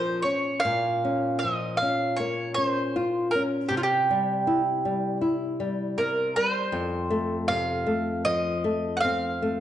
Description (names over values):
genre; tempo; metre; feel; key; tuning
fado; 78 BPM; 4/4; rubato; Bb harmonic minor; A4 = 440 Hz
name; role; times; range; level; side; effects
mandolin; melody; 0.0-9.6 s; F4 to Gb5; -26 LUFS; right 2 dB; none
flamenco guitar; accompaniment; 0.0-9.6 s; F2 to F4; -27 LUFS; left 2 dB; none
room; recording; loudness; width
moderate recital hall reverb, RT60 1.3 s; nothing above 11.0 kHz; -23 LUFS; side -11 dB against mid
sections
0.6-9.6 A section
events
none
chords
0.0 Bbm; 3.7 C; 6.7 F